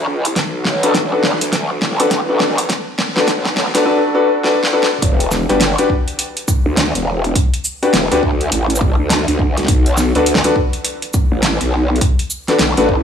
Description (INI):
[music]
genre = glitch hop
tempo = 103 BPM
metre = 4/4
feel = swing 62% on 16ths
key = E minor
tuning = A4 = 441 Hz
[part]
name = growl bass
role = bass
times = 0.0-13.0 s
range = E1 to D2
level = -17 LUFS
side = equal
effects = chorus, overdrive, high-pass filter
[part]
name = pop drum kit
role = drums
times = 0.2-12.9 s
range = hi-hat, shaker, snare drum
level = -19 LUFS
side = equal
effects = none
[part]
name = electronic kick drum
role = drums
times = 0.4-13.0 s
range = none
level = -16 LUFS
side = equal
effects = high-pass filter on kick
[part]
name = clear concert grand piano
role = stabs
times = 0.8-12.8 s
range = D4 to B4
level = -16 LUFS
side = left 2 dB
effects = vintage 12-bit sampler grit, sidechain pumping, low-pass filter, tape echo
[sound]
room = moderate lush hall reverb, RT60 1.9 s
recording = dry, gritty hardware recording, high-pass filter, small room reverb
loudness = -13 LUFS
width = side -8 dB against mid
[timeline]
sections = 0.0-5.0 A section; 5.0-13.0 B section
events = build-up 0.0-5.0; drum fill 0.0-3.9, 4.4-5.0; drop 5.0-13.0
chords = 0.4 Bm7; 5.0 Em7; 9.7 Bm7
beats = | 0.36 0.95 1.53 2.11 | 2.69 3.28 3.86 4.44 | 5.02 5.61 6.19 6.77 | 7.35 7.94 8.52 9.10 | 9.68 10.27 10.85 11.43 | 12.01 12.60